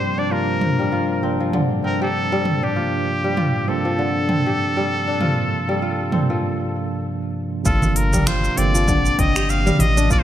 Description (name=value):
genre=organic downtempo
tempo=98 BPM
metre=4/4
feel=swing 57% on 16ths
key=G minor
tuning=A4 = 439 Hz
part: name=trumpet with straight mute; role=melody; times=0.0-10.2 s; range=G4 to F5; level=-24 LUFS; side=equal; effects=digital delay
part: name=bright tine electric piano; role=accompaniment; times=0.0-10.2 s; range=G2 to D4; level=-24 LUFS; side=right 2 dB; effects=medium stereo tremolo, sidechain pumping
part: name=warbly tape-like pad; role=sustained chords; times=0.0-10.2 s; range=G3 to A5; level=-30 LUFS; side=left 4 dB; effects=chorus, built-in reverb, sidechain pumping
part: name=kora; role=arpeggios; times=0.0-10.2 s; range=D3 to G4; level=-24 LUFS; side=left 1 dB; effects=digital delay
part: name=organic electronic drum kit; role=drums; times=0.6-10.2 s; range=finger snaps, hi-hat, shaker, toms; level=-24 LUFS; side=right 1 dB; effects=gated reverb
part: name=warm sub bass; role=bass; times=7.7-10.2 s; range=G1 to A1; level=-20 LUFS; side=equal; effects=none
part: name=electronic kick drum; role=drums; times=7.7-10.2 s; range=none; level=-22 LUFS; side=equal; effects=overdrive
part: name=congas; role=percussion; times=7.8-10.1 s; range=none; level=-26 LUFS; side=right 2 dB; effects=none
room=moderate plate reverb, RT60 2.1 s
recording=bright 1980s-style digital production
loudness=-17 LUFS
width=side -11 dB against mid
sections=0.0-7.7 A section; 7.7-10.2 B section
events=break 6.4-7.7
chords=0.0 Gm7